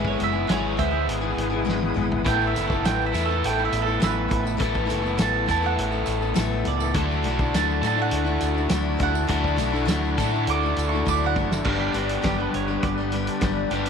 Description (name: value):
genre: folk rock and heartland rock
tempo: 102 BPM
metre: 4/4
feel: straight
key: unclear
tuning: A4 = 440 Hz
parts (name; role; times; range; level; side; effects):
- mandolin; second line; 0.0-13.9 s; F#4 to D6; -28 LUFS; right 13 dB; none
- picked steel-string acoustic guitar; accompaniment; 0.0-13.9 s; G2 to A4; -28 LUFS; left 11 dB; none
- bright tonewheel organ; sustained chords; 0.0-13.9 s; B3 to D5; -35 LUFS; equal; none
- overdriven electric guitar; riff; 0.0-13.9 s; G2 to A4; -27 LUFS; equal; none
- fingered electric bass; bass; 0.0-13.9 s; F#1 to A2; -28 LUFS; equal; none
- loose indie drum kit; drums; 0.0-13.9 s; crash cymbal, hi-hat, kick drum, snare drum, toms; -28 LUFS; right 1 dB; none
- tambourine; percussion; 2.4-11.7 s; none; -42 LUFS; right 17 dB; none
room: light reverb, studio ambience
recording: 1960s-style stereo with parts hard left and right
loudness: -21 LUFS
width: side -6 dB against mid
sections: 0.0-11.7 A section; 11.7-13.9 B section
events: mandolin solo 0.0-11.7; drum fill 1.7-2.3, 11.1-11.7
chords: 0.0 E; 2.3 Asus2; 7.0 Dadd9; 11.7 G